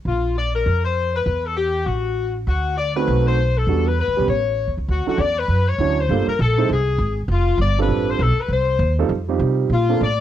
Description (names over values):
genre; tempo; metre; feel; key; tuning
jazz, big band swing; 199 BPM; 4/4; swing 61% on 8ths; unclear; A4 = 439 Hz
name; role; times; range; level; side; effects
clear saxophone section; melody; 0.1-10.2 s; F4 to D5; -22 LUFS; left 6 dB; cassette tape, plate reverb
upright bass; bass; 0.1-10.2 s; F1 to C3; -20 LUFS; equal; none
warm grand piano; accompaniment; 3.0-10.0 s; F#3 to C5; -22 LUFS; right 10 dB; cassette tape
room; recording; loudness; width
light reverb; home recording on cassette; -17 LUFS; side -11 dB against mid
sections
0.0-4.9 A section; 4.9-10.2 A section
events
none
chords
0.1 Bbsus2; 1.3 Em; 1.9 F#m/A; 2.5 D; 3.1 B7b9; 3.7 Em7; 4.3 A; 4.9 Dmaj7; 6.1 Gm9; 6.7 G#; 7.3 F69; 8.5 Cm; 9.1 F5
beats
| 0.06 0.36 0.66 0.96 | 1.26 1.57 1.87 2.17 | 2.47 2.77 3.08 3.38 | 3.68 3.98 4.28 4.58 | 4.88 5.19 5.49 5.79 | 6.09 6.39 6.69 6.99 | 7.29 7.60 7.90 8.20 | 8.50 8.80 9.10 9.40 | 9.71 10.01